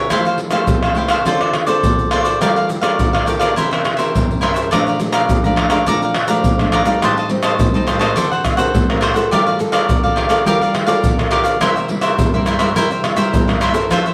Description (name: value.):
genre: samba and choro.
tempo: 104 BPM.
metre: 4/4.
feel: straight.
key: unclear.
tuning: A4 = 440 Hz.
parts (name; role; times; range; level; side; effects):
cavaquinho; accompaniment; 0.0-14.1 s; D4 to Bb5; -20 LUFS; equal; none.
nylon-string guitar; accompaniment; 0.0-14.1 s; F2 to Bb4; -23 LUFS; equal; none.
egg shaker, surdo, pandeiro and tamborim; percussion; 0.1-14.1 s; none; -19 LUFS; equal; none.
room: moderate echo chamber reverb, RT60 1.7 s, small room ambience.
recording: none.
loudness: -16 LUFS.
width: mono.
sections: 0.0-4.7 A section; 4.7-14.1 B section.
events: none.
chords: 0.1 Fmaj9; 1.3 Dm7; 2.4 Gm9; 3.6 C7b9; 4.7 Bbmaj7; 7.0 Am7b5; 8.2 D7b13; 9.3 Gm9; 11.6 C7.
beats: | 0.10 0.68 1.26 1.84 | 2.41 2.99 3.57 4.14 | 4.72 5.30 5.87 6.45 | 7.02 7.60 8.17 8.75 | 9.32 9.89 10.47 11.04 | 11.61 12.19 12.76 13.33 | 13.91.